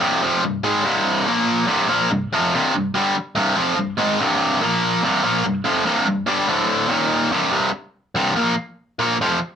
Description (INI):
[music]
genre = rock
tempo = 144 BPM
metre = 4/4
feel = straight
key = C minor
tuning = A4 = 440 Hz
[part]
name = biting overdriven guitar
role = solo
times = 0.0-9.4 s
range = C2 to Bb3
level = -17 LUFS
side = equal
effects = none
[sound]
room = light reverb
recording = band playing live in one room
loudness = -17 LUFS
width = side -8 dB against mid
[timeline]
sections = 0.0-7.5 A section; 7.5-9.6 B section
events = none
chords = 0.0 Cm; 1.3 Bb5; 1.7 C5; 4.6 Bb5; 5.0 C5; 6.5 D5; 6.9 Eb5; 7.3 C5; 8.4 Bb5